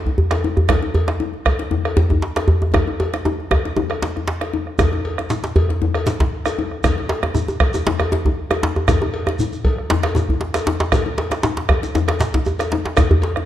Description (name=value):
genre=west african traditional, West African drum ensemble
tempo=117 BPM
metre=4/4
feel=straight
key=none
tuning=none
part: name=bombo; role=percussion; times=0.1-13.5 s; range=none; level=-21 LUFS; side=right 2 dB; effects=none
part: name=djembe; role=percussion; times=0.1-13.5 s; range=none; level=-24 LUFS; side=left 5 dB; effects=none
part: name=djembe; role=percussion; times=0.2-13.4 s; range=none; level=-20 LUFS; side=equal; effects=none
part: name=cowbell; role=percussion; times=0.3-13.4 s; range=none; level=-27 LUFS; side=left 3 dB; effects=none
part: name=shekere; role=percussion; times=4.8-13.1 s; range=none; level=-29 LUFS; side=right 2 dB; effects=none
room=wet recital hall reverb, RT60 1.3 s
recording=dark, warm production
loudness=-17 LUFS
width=side -12 dB against mid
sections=0.0-4.8 A section; 4.8-13.5 B section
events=drum fill 2.7-4.8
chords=none